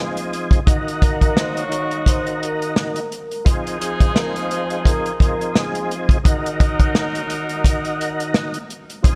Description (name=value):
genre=hip hop, boom-bap hip-hop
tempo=86 BPM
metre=4/4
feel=swing 56% on 16ths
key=Eb dorian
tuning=A4 = 438 Hz
part: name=tonewheel organ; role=accompaniment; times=0.0-9.2 s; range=Eb3 to Bb4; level=-26 LUFS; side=equal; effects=chorus vibrato, slow rotary speaker, cassette tape, high-pass filter, low-pass filter
part: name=clear horn section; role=stabs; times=0.0-9.2 s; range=Eb3 to Bb4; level=-33 LUFS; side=equal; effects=high-pass filter, low-pass filter, tape echo
part: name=warm soul drum kit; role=drums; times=0.2-9.2 s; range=hi-hat, kick drum, rim click, snare drum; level=-19 LUFS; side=equal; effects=none
part: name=vibraphone with soft mallets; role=melody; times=1.0-5.9 s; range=Ab4 to Db6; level=-29 LUFS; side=equal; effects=high-pass filter, low-pass filter
room=light reverb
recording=none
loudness=-19 LUFS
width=mono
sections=0.0-9.2 A section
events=none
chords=0.0 Fm7; 0.7 Ebm; 3.5 Fm7; 6.3 Ebm